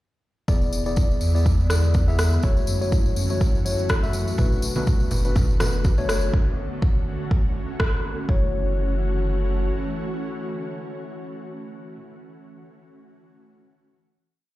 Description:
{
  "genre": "afro house",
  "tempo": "123 BPM",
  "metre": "4/4",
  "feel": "swing 55% on 16ths",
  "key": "F# minor",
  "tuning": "A4 = 439 Hz",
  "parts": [
    { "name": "ethereal airy pad", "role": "sustained chords", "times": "0.9-12.0 s", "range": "D3 to F#4", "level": "-32 LUFS", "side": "right 1 dB", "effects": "ensemble chorus, built-in reverb, sidechain pumping" },
    { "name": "mellow tine electric piano", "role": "stabs", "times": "0.5-12.0 s", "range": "A3 to E5", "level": "-29 LUFS", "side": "left 3 dB", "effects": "sidechain pumping, dub echo" },
    { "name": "warm sub bass", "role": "bass", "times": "0.5-9.7 s", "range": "E1 to F#2", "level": "-23 LUFS", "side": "equal", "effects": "sidechain pumping" },
    { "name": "electronic kick drum", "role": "drums", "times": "0.5-8.4 s", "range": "none", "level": "-20 LUFS", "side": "equal", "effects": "small room ambience" },
    { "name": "tambourine", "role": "percussion", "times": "0.5-6.3 s", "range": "none", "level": "-36 LUFS", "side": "left 3 dB", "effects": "none" },
    { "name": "electronic rim click", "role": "drums", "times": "1.7-7.9 s", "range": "none", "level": "-28 LUFS", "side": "right 1 dB", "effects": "small room ambience" },
    { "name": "congas", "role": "percussion", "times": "4.4-6.0 s", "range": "none", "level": "-29 LUFS", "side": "right 2 dB", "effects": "none" }
  ],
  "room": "light reverb",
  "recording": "played on a big sound system in a bare room, stone room reverb",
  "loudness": "-20 LUFS",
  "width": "side -16 dB against mid",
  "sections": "0.5-8.3 groove; 8.3-12.2 final chord",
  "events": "band accent 7.8",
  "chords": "0.5 E7; 2.4 F#m7; 4.4 Bm7; 6.3 Dmaj7; 8.3 F#m7"
}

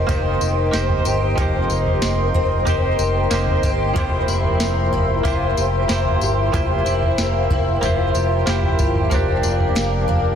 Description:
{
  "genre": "dream pop",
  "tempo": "93 BPM",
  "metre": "4/4",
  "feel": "straight",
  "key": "unclear",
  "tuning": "A4 = 442 Hz",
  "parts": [
    { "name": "direct-recorded clean electric guitar", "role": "accompaniment", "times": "0.0-10.4 s", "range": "F3 to C5", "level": "-26 LUFS", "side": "right 4 dB", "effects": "tremolo, wide subtle chorus, shimmer reverb" },
    { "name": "warbly tape-like pad", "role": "sustained chords", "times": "0.0-10.4 s", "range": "Bb4 to D6", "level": "-23 LUFS", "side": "left 2 dB", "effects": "chorus, built-in reverb, shimmer reverb" },
    { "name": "picked twelve-string acoustic guitar", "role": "arpeggios", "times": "0.0-10.4 s", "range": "F2 to G4", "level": "-23 LUFS", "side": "left 2 dB", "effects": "ensemble chorus, ping-pong delay, shimmer reverb" },
    { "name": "fingered electric bass", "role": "bass", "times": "0.0-10.4 s", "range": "F1 to G1", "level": "-22 LUFS", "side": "equal", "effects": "none" },
    { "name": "soft vintage rhythm box", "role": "drums", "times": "0.1-10.2 s", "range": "kick drum, snare drum, tambourine, toms", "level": "-23 LUFS", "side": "right 1 dB", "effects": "none" }
  ],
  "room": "moderate concert hall reverb, RT60 2.2 s",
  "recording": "dense, heavily limited modern master",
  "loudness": "-16 LUFS",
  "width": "side -8 dB against mid",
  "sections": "0.0-10.4 A section",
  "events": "none",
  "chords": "0.0 Eb6/F; 4.0 C7/F; 9.1 Gm7/F"
}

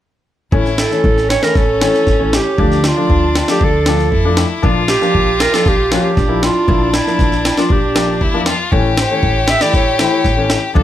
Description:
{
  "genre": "klezmer",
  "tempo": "117 BPM",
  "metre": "4/4",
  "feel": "straight",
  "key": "A phrygian dominant",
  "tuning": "A4 = 440 Hz",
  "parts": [
    { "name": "rich violin", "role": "second line", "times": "0.5-10.8 s", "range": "C#4 to A4", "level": "-19 LUFS", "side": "left 4 dB", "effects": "none" },
    { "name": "warm upright piano", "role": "accompaniment", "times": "0.5-10.8 s", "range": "E3 to E4", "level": "-19 LUFS", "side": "left 4 dB", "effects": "none" },
    { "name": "upright bass", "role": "bass", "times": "0.5-10.8 s", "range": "A1 to F2", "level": "-19 LUFS", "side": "equal", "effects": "none" },
    { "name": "jungle sampler-style drum kit", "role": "drums", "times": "0.5-10.8 s", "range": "kick drum, snare drum", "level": "-17 LUFS", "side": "equal", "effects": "none" },
    { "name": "mellow clarinet", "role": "melody", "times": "0.8-10.5 s", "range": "E4 to E5", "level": "-17 LUFS", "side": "right 4 dB", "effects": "none" }
  ],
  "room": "light reverb",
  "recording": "none",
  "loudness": "-11 LUFS",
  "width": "side -12 dB against mid",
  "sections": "0.5-10.8 A section",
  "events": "none",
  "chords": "0.5 A; 2.6 Dm; 4.6 Bb; 8.7 A"
}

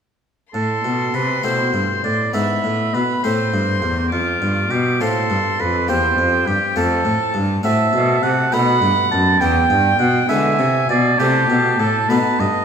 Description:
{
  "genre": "classical, baroque-style sonata movement with continuo",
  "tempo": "68 BPM (dotted quarters)",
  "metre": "6/8",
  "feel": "straight",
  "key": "A minor, E minor from 7.7 s",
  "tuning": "A4 = 440 Hz",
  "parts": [
    { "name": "rich violin", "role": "melody", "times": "0.5-12.6 s", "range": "F#5 to D6", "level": "-25 LUFS", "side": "left 6 dB", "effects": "none" },
    { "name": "warm oboe", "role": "second line", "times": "0.5-12.6 s", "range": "F4 to B5", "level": "-18 LUFS", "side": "right 4 dB", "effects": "none" },
    { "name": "harpsichord", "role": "accompaniment", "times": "0.5-12.6 s", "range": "E2 to G4", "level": "-23 LUFS", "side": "left 2 dB", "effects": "none" },
    { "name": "rich cello", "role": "bass", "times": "0.5-12.5 s", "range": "E2 to D3", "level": "-20 LUFS", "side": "equal", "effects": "none" }
  ],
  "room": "wet concert hall reverb, RT60 1.7 s",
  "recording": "minimal, uncompressed stereo recording",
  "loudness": "-15 LUFS",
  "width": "side -7 dB against mid",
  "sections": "0.5-12.6 A section",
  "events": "none",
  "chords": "0.5 Am; 2.3 E7/G#; 3.2 Am; 4.1 F; 5.9 C7/E; 6.8 F; 7.7 F#m7b5/A; 8.5 B7; 9.4 Em; 10.3 E7; 11.2 Am; 12.1 B7"
}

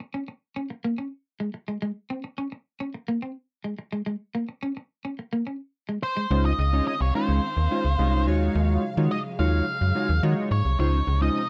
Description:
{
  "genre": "funk",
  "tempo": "107 BPM",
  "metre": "4/4",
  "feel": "straight",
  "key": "Db major",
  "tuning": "A4 = 439 Hz",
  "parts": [
    { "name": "electric guitar at the edge of break-up", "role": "riff", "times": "0.0-6.3 s", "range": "Ab3 to Db4", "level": "-32 LUFS", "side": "equal", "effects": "subtle chorus" },
    { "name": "octave-fuzz lead guitar", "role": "melody", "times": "6.0-11.5 s", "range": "C5 to F5", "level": "-31 LUFS", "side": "equal", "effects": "distortion, slapback echo" },
    { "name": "chorused polysynth", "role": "accompaniment", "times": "6.3-11.4 s", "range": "Ab3 to Db5", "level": "-29 LUFS", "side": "equal", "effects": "none" },
    { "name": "warm studio string section", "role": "sustained chords", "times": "6.3-11.5 s", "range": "C3 to F5", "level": "-38 LUFS", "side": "equal", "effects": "none" },
    { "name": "slap-like FM bass", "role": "bass", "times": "6.3-11.3 s", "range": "C2 to Eb3", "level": "-24 LUFS", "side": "equal", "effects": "none" }
  ],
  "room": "little or no reverb",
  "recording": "dry, close 1970s-style studio recording",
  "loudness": "-26 LUFS",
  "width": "mono",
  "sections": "0.0-6.3 A section; 6.3-11.5 B section",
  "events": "none",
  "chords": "0.0 Absus24; 1.8 Db5; 3.8 Absus4; 6.3 Dbmaj9; 8.3 Ebm11; 10.8 Dbmaj9"
}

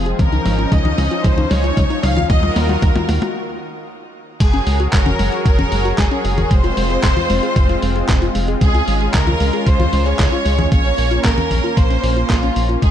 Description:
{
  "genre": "italo disco",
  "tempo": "114 BPM",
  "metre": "4/4",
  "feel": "straight",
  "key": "Bb minor",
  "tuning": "A4 = 440 Hz",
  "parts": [
    { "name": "rich studio violin section", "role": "melody", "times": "0.0-12.9 s", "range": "F4 to F5", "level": "-22 LUFS", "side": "equal", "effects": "vintage 12-bit sampler grit, low-pass filter, tape echo, shimmer reverb" },
    { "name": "lush unison pad", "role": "sustained chords", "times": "0.0-12.9 s", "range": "Eb3 to Db5", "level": "-23 LUFS", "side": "equal", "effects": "chorus, shimmer reverb" },
    { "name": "warbly dusty pluck", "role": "arpeggios", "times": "0.0-12.9 s", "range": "Ab3 to Ab4", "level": "-24 LUFS", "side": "left 3 dB", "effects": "chorus, cassette tape, ping-pong delay, shimmer reverb" },
    { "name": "round analog bass", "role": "bass", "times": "0.0-12.9 s", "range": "F1 to Eb2", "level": "-19 LUFS", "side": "equal", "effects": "none" },
    { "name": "dusty soul sampler-style drum kit", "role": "drums", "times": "0.1-12.9 s", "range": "congas, crash cymbal, handclaps, hi-hat, snare drum, toms", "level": "-22 LUFS", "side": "left 1 dB", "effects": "small room ambience" },
    { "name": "electronic kick drum", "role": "drums", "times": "0.2-12.9 s", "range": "none", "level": "-16 LUFS", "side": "equal", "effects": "small room ambience" }
  ],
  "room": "light reverb",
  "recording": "dark, warm production",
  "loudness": "-14 LUFS",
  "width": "side -10 dB against mid",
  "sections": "0.0-4.4 A section; 4.4-12.9 B section",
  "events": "drum fill 0.0-3.4; filter sweep on synth arpeggio sound 0.0-4.4; break 3.4-4.4",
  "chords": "0.2 Dbadd9; 2.3 Ebmadd9; 4.4 Gbadd9; 6.5 Fm; 8.6 Db; 10.7 Bbmadd9"
}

